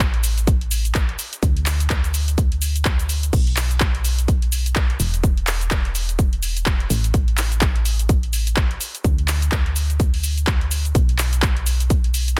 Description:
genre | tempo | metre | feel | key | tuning
piano house | 126 BPM | 4/4 | swing 59% on 16ths | B minor | A4 = 440 Hz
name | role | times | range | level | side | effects
solid FM bass | bass | 0.0-12.4 s | E1 to D2 | -24 LUFS | equal | tube saturation, sidechain pumping
electronic kick drum | drums | 0.0-12.0 s | none | -21 LUFS | equal | none
house drum kit | drums | 0.0-12.4 s | cabasa, crash cymbal, handclaps, hi-hat | -27 LUFS | equal | none
room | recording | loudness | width
digital ambience | dense, heavily limited modern master | -20 LUFS | mono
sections
0.0-12.4 A section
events
none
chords
none

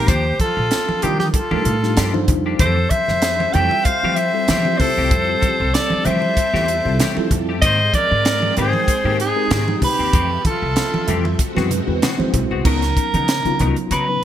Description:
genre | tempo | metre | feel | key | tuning
electric jazz fusion | 96 BPM | 4/4 | swing 54% on 16ths | unclear | A4 = 440 Hz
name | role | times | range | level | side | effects
warm soprano saxophone | melody | 0.0-14.2 s | G4 to G5 | -20 LUFS | right 1 dB | none
breathy bright jazz flute | second line | 0.0-11.4 s | Eb4 to E5 | -26 LUFS | left 4 dB | none
mellow tine electric piano | accompaniment | 0.0-14.2 s | Gb3 to G5 | -24 LUFS | left 1 dB | medium stereo tremolo, phaser
clean electric guitar | stabs | 0.0-14.1 s | Eb3 to Bb4 | -28 LUFS | left 6 dB | ensemble chorus
upright bass | bass | 0.0-14.2 s | Bb1 to F3 | -22 LUFS | equal | none
crisp fusion drum kit | drums | 0.1-14.1 s | crash cymbal, hi-hat, kick drum, snare drum | -21 LUFS | equal | gated reverb
congas | percussion | 0.4-13.8 s | none | -26 LUFS | right 2 dB | none
string machine, violins | sustained chords | 2.6-12.6 s | F3 to G5 | -29 LUFS | equal | ensemble chorus
room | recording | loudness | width
light reverb, small room ambience | bright 1980s-style digital production | -15 LUFS | side -10 dB against mid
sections
0.0-12.7 A section; 12.7-14.2 B section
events
none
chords
0.1 Ebmaj9; 2.6 Fmaj9; 7.6 Abmaj9; 10.1 Fmaj9; 11.4 Ab7alt; 12.7 Db13sus4

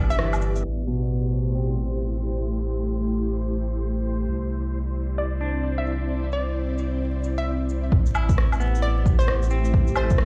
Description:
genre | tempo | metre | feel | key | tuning
future garage | 132 BPM | 4/4 | swing 63% on 16ths | A minor | A4 = 441 Hz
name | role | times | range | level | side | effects
clean electric guitar | accompaniment | 0.0-2.4, 5.4-10.2 s | B2 to E4 | -32 LUFS | equal | sidechain pumping, analog delay
ethereal airy pad | sustained chords | 0.0-10.2 s | A3 to C6 | -33 LUFS | equal | ensemble chorus, built-in reverb, tremolo, sidechain pumping
warm sub bass | bass | 0.0-10.2 s | G1 to C2 | -28 LUFS | equal | sidechain pumping
backwards swelling texture | texture | 0.0-7.9 s | C5 to D5 | -45 LUFS | equal | built-in reverb
hollow square pluck | melody | 0.1-0.4, 5.2-10.2 s | C5 to E5 | -33 LUFS | equal | chorus, cassette tape, tape echo
electronic shaker, rim click, woodblock and cabasa | drums | 0.1-10.2 s | none | -32 LUFS | equal | vintage 12-bit sampler grit
electronic kick drum | drums | 7.9-10.2 s | none | -22 LUFS | equal | vintage 12-bit sampler grit
room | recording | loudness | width
light reverb, digital ambience | played on a big sound system in a bare room, large studio reverb, vinyl crackle, low-pass filter | -24 LUFS | mono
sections
0.6-7.9 A section; 7.9-10.2 B section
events
break 0.2-0.6; band accent 0.2; filter sweep 0.6-7.9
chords
0.0 G; 0.6 Am7; 4.3 Cadd9; 7.9 Am7

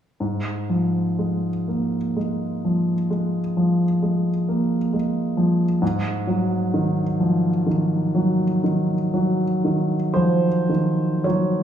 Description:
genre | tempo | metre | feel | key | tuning
classical, romantic nocturne for solo piano | 34-46 BPM (dotted quarters) | 12/8 | rubato | unclear | A4 = 440 Hz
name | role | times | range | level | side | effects
clear grand piano | solo | 0.2-11.6 s | Ab2 to Db5 | -19 LUFS | equal | none
room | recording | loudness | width
wet recital hall reverb, RT60 1.5 s | small room reverb | -19 LUFS | side -9 dB against mid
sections
0.2-11.6 A section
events
none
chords
0.2 Fmadd11/Ab; 5.8 Ab7

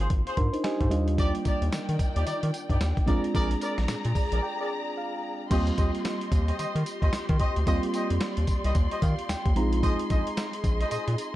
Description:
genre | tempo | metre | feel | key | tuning
R&B, new jack swing | 111 BPM | 4/4 | swing 60% on 16ths | unclear | A4 = 440 Hz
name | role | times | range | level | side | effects
mellow FM electric piano | accompaniment | 0.0-11.4 s | G3 to C6 | -32 LUFS | right 2 dB | chorus
warm horn section | stabs | 0.0-11.1 s | Eb4 to Eb5 | -34 LUFS | left 1 dB | none
round analog bass | bass | 0.0-11.2 s | Ab1 to Eb3 | -27 LUFS | equal | none
boom bap sampler-style drum kit | drums | 0.1-11.3 s | crash cymbal, hi-hat, kick drum, snare drum, tambourine | -28 LUFS | equal | none
dark studio string section | sustained chords | 1.2-11.4 s | Eb3 to C6 | -35 LUFS | left 1 dB | none
room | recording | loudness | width
digital ambience | dark, warm production | -24 LUFS | side -15 dB against mid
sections
0.0-5.5 A section; 5.5-11.4 B section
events
FM electric piano fill 0.1-1.2, 3.9-5.5, 8.8-9.8; break 4.4-5.5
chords
0.0 Ab6; 0.9 Ebmaj7; 3.1 Bb7; 5.5 Eb6; 9.6 Bb9sus4

